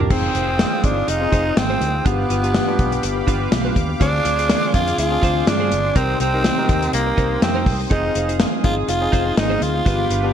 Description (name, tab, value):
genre	1980s-style pop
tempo	123 BPM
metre	4/4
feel	swing 55% on 16ths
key	unclear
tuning	A4 = 440 Hz
part	tine electric piano	accompaniment	0.0-10.3 s	G2 to Bb4	-24 LUFS	left 4 dB	medium stereo tremolo
part	brassy analog pad	sustained chords	0.0-10.3 s	G4 to Eb6	-28 LUFS	equal	chorus
part	direct-recorded clean electric guitar	riff	0.0-10.3 s	D4 to C5	-29 LUFS	right 5 dB	analog chorus
part	vintage muted fingered electric bass	bass	0.0-10.3 s	F1 to G2	-24 LUFS	equal	none
part	growling tenor saxophone	melody	0.1-10.3 s	Bb3 to F4	-22 LUFS	right 1 dB	none
part	modern studio drum kit	drums	0.1-10.2 s	crash cymbal, hi-hat, kick drum, snare drum	-20 LUFS	equal	gated reverb
room	light reverb, small room ambience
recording	bright 1980s-style digital production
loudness	-16 LUFS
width	side -9 dB against mid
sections	0.1-10.3 A section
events	none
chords	0.1 Fm7; 2.1 G7; 4.0 Dm7b5; 6.0 Cm7; 7.9 Fm7